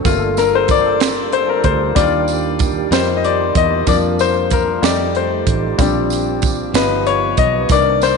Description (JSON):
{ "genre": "slow gospel", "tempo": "63 BPM (dotted quarters)", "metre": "6/8", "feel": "straight", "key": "unclear", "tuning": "A4 = 441 Hz", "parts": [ { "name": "bright baby grand piano", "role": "accompaniment", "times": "0.0-8.2 s", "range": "Eb3 to Eb5", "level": "-16 LUFS", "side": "left 9 dB", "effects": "none" }, { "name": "mellow French horn section", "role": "sustained chords", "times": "0.0-8.2 s", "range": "Eb3 to Bb4", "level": "-26 LUFS", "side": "right 13 dB", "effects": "none" }, { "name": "percussive tonewheel organ", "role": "sustained chords", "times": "0.0-8.2 s", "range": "Eb3 to Bb4", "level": "-27 LUFS", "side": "right 12 dB", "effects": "slow rotary speaker, overdrive, chorus vibrato" }, { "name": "fingered electric bass", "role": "bass", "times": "0.0-8.2 s", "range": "G1 to F2", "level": "-23 LUFS", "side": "right 2 dB", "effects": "none" }, { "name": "crisp fusion drum kit", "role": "drums", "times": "0.1-8.2 s", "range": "hi-hat, kick drum, snare drum", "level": "-19 LUFS", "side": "right 5 dB", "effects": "none" }, { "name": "tambourine", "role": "percussion", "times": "0.1-8.2 s", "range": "none", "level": "-31 LUFS", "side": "right 16 dB", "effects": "none" } ], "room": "moderate echo chamber reverb, RT60 2.2 s", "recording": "1960s-style stereo with parts hard left and right, nothing above 10.8 kHz", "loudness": "-13 LUFS", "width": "side -4 dB against mid", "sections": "0.0-8.2 A section", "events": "grand piano solo 0.0-8.2", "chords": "0.0 Gm9; 2.0 Ebmaj7; 2.9 F9sus4; 3.9 Bb/F; 4.8 F9; 5.8 Bb6; 6.7 Gaug7" }